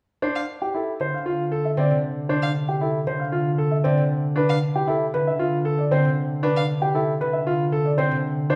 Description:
classical, minimalist pattern music; 116 BPM; 4/4; straight; G mixolydian; A4 = 439 Hz
warm baby grand piano; melody; 0.2-8.6 s; G4 to F5; -28 LUFS; equal
bright concert grand piano; arpeggios; 0.2-8.6 s; C4 to A4; -28 LUFS; equal
rich violin; arpeggios; 0.4-6.7 s; F5; -34 LUFS; equal
concert harp; accompaniment; 1.0-8.5 s; C3 to D3; -26 LUFS; equal
wet recital hall reverb, RT60 1.5 s; -23 LUFS; mono
0.2-8.6 A section
0.2 G7sus4 (rootless)
| 0.23 0.74 1.26 1.78 | 2.29 2.81 3.33 3.85 | 4.36 4.88 5.40 5.92 | 6.43 6.95 7.47 7.98 | 8.50

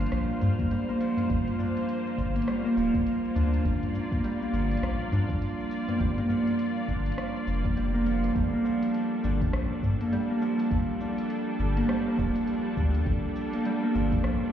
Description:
organic downtempo; 102 BPM; 4/4; swing 60% on 16ths; G minor; A4 = 439 Hz
clear symphonic string section; sustained chords; 0.0-14.5 s; G3 to D5; -34 LUFS; right 3 dB; sidechain pumping
Celtic harp; arpeggios; 0.0-14.5 s; F3 to G4; -28 LUFS; equal; digital delay
warm sub bass; bass; 0.0-14.4 s; D1 to G2; -28 LUFS; equal; tube saturation, sidechain pumping
afro-pop drum kit; drums; 0.0-14.4 s; hi-hat, rim click, shaker; -43 LUFS; equal; studio reverb
tabla; percussion; 0.0-8.3 s; -36 LUFS; left 1 dB
drifting glass-harmonics texture; texture; 0.0-8.4 s; F4 to F5; -44 LUFS; equal; chorus, built-in reverb
electronic kick drum; drums; 0.6-14.2 s; -30 LUFS; equal; studio reverb
moderate concert hall reverb, RT60 2.0 s; heard muffled through a wall, stone room reverb, EQ; -25 LUFS; side -10 dB against mid
0.0-8.4 A section; 8.4-14.5 B section
0.0 Bb; 8.4 Gm7
0.12 0.71 | 1.30 1.89 2.48 3.06 | 3.65 4.24 4.83 5.42 | 6.00 6.59 7.18 7.77 | 8.36 8.95 9.53 10.12 | 10.71 11.30 11.89 12.47 | 13.06 13.65 14.24

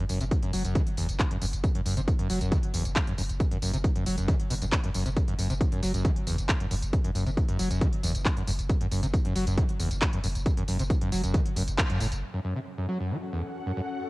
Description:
driving peak-time techno; 136 BPM; 4/4; straight; F# minor; A4 = 440 Hz
screaming distorted acid line; riff; 0.0-13.8 s; E2 to F#3; -30 LUFS; equal; distortion, wide subtle chorus, sidechain pumping, cassette tape, tape echo
saturated sub bass; bass; 0.1-12.2 s; F#1; -31 LUFS; equal; overdrive, sidechain pumping, low-pass filter
techno drum kit; drums; 0.1-12.2 s; handclaps, hi-hat, tambourine; -34 LUFS; equal; cassette tape
electronic kick drum; drums; 0.3-11.9 s; -26 LUFS; equal; cassette tape
ethereal airy pad; texture; 12.6-14.1 s; C#4 to F#5; -36 LUFS; left 2 dB; ensemble chorus, built-in reverb, sidechain pumping, cassette tape
little or no reverb; home recording on cassette; -25 LUFS; side -21 dB against mid
0.0-12.2 A section; 12.2-14.1 B section
band accent 11.8
0.0 N.C.; 12.2 F#m
0.31 0.75 1.20 | 1.64 2.08 2.52 2.96 | 3.40 3.84 4.28 4.72 | 5.17 5.61 6.05 6.49 | 6.93 7.37 7.81 8.25 | 8.70 9.14 9.58 10.02 | 10.46 10.90 11.34 11.78 | 12.22 12.67 13.11 13.55 | 13.99

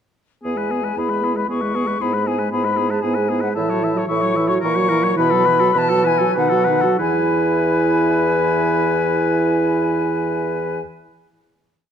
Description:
quick classical-period movement for wind quintet; 94-117 BPM; 3/4; straight; E major; A4 = 441 Hz
silver concert flute; melody; 0.4-10.8 s; F#5 to C#6; -22 LUFS; left 7 dB
clear oboe; second line; 0.4-10.8 s; G#4 to E5; -26 LUFS; left 4 dB
dark French horn; accompaniment; 0.4-10.8 s; D#3 to B3; -23 LUFS; equal
mellow clarinet; accompaniment; 0.4-10.8 s; D#4 to G#4; -24 LUFS; right 9 dB
mellow bassoon; bass; 0.4-10.8 s; E2 to B2; -21 LUFS; right 2 dB
moderate recital hall reverb, RT60 1.4 s; dark, warm production; -16 LUFS; side -8 dB against mid
0.4-7.0 A section; 7.0-10.7 final chord
slowing down 2.8-7.0
0.4 E; 2.0 E/G#; 3.6 F#m7/A; 4.6 F#7/A#; 5.2 B7sus4; 6.4 B7; 7.0 E
| 0.44 0.97 1.49 | 2.01 2.52 3.04 | 3.56 4.09 4.63 | 5.18 5.76 6.36 | 6.99 7.61 8.24 | 8.86 9.48 10.12

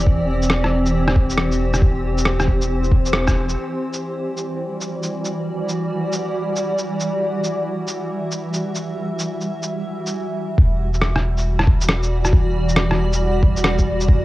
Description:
future garage; 137 BPM; 4/4; swing 65% on 16ths; E minor; A4 = 440 Hz
granular cloud pad; sustained chords; 0.0-14.2 s; E3 to E5; -22 LUFS; equal; built-in reverb, sidechain pumping, cassette tape
warm sub bass; bass; 0.0-3.6, 10.6-14.2 s; E1; -21 LUFS; equal; tube saturation, sidechain pumping
electronic kick drum; drums; 0.1-3.3, 10.6-14.2 s; -15 LUFS; equal; overdrive, studio reverb, cassette tape
electronic shaker and rim click; drums; 0.4-14.1 s; -22 LUFS; equal; overdrive, studio reverb, cassette tape
light reverb, digital ambience; home recording on cassette; -18 LUFS; side -17 dB against mid
0.0-3.6 A section; 3.6-10.6 B section; 10.6-14.2 C section
band accent 3.1
0.0 D9sus4/E (rootless); 3.6 Em9
| 0.07 0.51 0.94 1.38 | 1.82 2.26 2.70 3.13 | 3.57 4.01 4.45 4.89 | 5.32 5.76 6.20 6.64 | 7.08 7.51 7.95 8.39 | 8.83 9.27 9.70 10.14 | 10.58 11.02 11.46 11.89 | 12.33 12.77 13.21 13.64 | 14.08

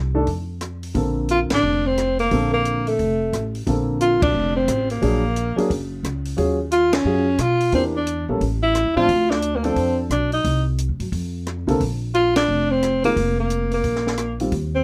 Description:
jazz, small-group swing and bop; 177 BPM; 4/4; swing 64% on 8ths; Bb major; A4 = 440 Hz
upright bass; bass; 0.0-14.8 s; F1 to Cb3; -27 LUFS; equal
warm baby grand piano; accompaniment; 0.1-14.5 s; D3 to C5; -26 LUFS; equal
compact cocktail drum kit; drums; 0.3-14.6 s; hi-hat, kick drum, ride cymbal, rim click, snare drum; -31 LUFS; equal
warm tenor saxophone; melody; 1.3-14.8 s; A3 to F4; -22 LUFS; equal
light reverb; -21 LUFS; mono
0.0-3.7 A section; 3.7-14.5 A section
band accent 1.5, 4.2, 6.9, 12.3
0.3 N.C.; 0.9 Bbmaj9; 3.0 F; 3.7 Bbmaj9; 5.0 Bb7alt; 6.4 Ebm11; 7.7 Em7b5; 8.4 A5; 9.1 Dm7; 10.4 Cm; 11.1 F6; 11.8 Bbadd9; 13.2 Fsus4; 13.8 Bbsus2
0.26 0.60 | 0.94 1.28 1.62 1.96 | 2.30 2.64 2.98 3.32 | 3.66 4.00 4.34 4.68 | 5.02 5.36 5.69 6.03 | 6.37 6.71 7.05 7.39 | 7.73 8.07 8.40 8.74 | 9.08 9.42 9.76 10.10 | 10.44 10.78 11.12 11.46 | 11.80 12.14 12.47 12.81 | 13.15 13.49 13.83 14.17 | 14.51

